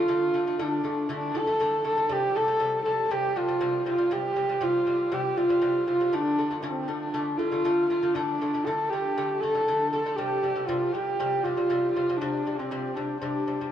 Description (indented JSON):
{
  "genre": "mongolian traditional, Mongolian folk",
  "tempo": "119 BPM",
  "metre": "4/4",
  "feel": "straight",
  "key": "unclear",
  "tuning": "A4 = 440 Hz",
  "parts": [
    { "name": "rich horsehead fiddle", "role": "melody", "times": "0.0-13.7 s", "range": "C4 to A4", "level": "-24 LUFS", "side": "right 1 dB", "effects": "none" },
    { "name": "lute", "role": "arpeggios", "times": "0.0-13.7 s", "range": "C3 to A3", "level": "-32 LUFS", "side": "left 5 dB", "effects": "none" }
  ],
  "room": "wet huge ambient reverb, RT60 4.0 s",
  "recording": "worn, warbling old tape, cassette tape, warbly pitch drift, small room ambience",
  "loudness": "-24 LUFS",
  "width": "side -10 dB against mid",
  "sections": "0.0-13.7 A section",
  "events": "none",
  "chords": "0.0 D5; 2.1 C5; 6.1 D5; 10.2 C5"
}